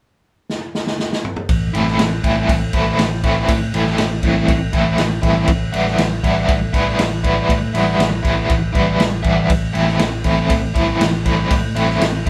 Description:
psychedelic rock; 120 BPM; 4/4; straight; A minor; A4 = 443 Hz
vintage drum kit; drums; 0.5-12.3 s; kick drum, ride cymbal, snare drum, toms; -22 LUFS; equal
fingered electric bass; bass; 1.5-12.3 s; A1 to A2; -24 LUFS; equal
overdriven electric guitar; riff; 1.7-12.3 s; E3 to E4; -20 LUFS; equal; tremolo
moderate studio reverb, RT60 0.6 s; band playing live in one room; -17 LUFS; mono
0.0-1.5 A section; 1.5-12.3 B section
drum fill 0.5-1.5
0.0 N.C.; 1.5 Am; 5.5 Em/A; 9.5 Am

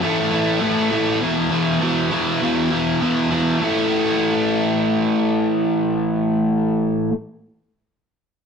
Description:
punk; 200 BPM; 4/4; straight; A4 = 439 Hz
biting overdriven guitar; solo; 0.0-7.1 s; E2 to A3; -17 LUFS; equal
light reverb; rough rehearsal-room recording, tube saturation; -17 LUFS; side -6 dB against mid
0.0-1.2 A section; 1.2-3.6 B section; 3.6-6.0 C section
0.0 A5; 1.2 E5; 3.6 A5

